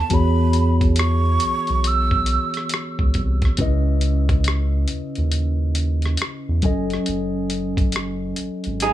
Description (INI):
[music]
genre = R&B, neo-soul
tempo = 69 BPM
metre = 4/4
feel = swing 62% on 16ths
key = F# dorian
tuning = A4 = 440 Hz
[part]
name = breathy hollow jazz flute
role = melody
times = 0.0-2.7 s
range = A5 to E6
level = -24 LUFS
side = right 3 dB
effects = plate reverb, tape echo
[part]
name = mellow tine electric piano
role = accompaniment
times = 0.0-8.9 s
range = C#3 to G#5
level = -25 LUFS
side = left 2 dB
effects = medium stereo tremolo, plate reverb
[part]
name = round analog bass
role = bass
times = 0.0-8.9 s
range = F#1 to E2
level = -20 LUFS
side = equal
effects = none
[part]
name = dusty soul sampler-style drum kit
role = drums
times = 0.1-8.9 s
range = hi-hat, kick drum, rim click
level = -23 LUFS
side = equal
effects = none
[part]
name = electric guitar through a small old amp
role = second line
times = 8.8-8.9 s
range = D#4 to G#4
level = -17 LUFS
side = right 5 dB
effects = wide subtle chorus
[sound]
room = little or no reverb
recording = none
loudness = -18 LUFS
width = side -13 dB against mid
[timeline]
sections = 0.0-8.9 A section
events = none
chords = 0.1 E6; 3.6 C#m9; 6.6 F#m69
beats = | 0.11 0.98 1.85 2.72 | 3.59 4.46 5.33 6.20 | 7.07 7.94 8.81